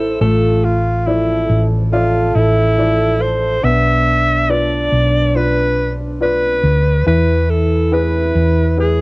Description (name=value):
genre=pop ballad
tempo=70 BPM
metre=4/4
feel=straight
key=unclear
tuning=A4 = 439 Hz
part: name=breathy alto saxophone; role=melody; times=0.0-9.0 s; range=E4 to E5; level=-17 LUFS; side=equal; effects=cassette tape
part: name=mellow French horn section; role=second line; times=0.0-9.0 s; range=D4 to A4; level=-22 LUFS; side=right 2 dB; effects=cassette tape
part: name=warm upright piano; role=accompaniment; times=0.0-9.0 s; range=E3 to E5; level=-22 LUFS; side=left 2 dB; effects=cassette tape
part: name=hollow-body short-scale fingered electric bass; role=bass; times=0.0-9.0 s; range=A1 to E2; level=-16 LUFS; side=equal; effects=none
room=little or no reverb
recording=home recording on cassette, nothing above 10.7 kHz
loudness=-12 LUFS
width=side -24 dB against mid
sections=0.0-9.0 A section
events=none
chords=0.2 Dmadd9/A; 3.6 Bdim; 7.1 E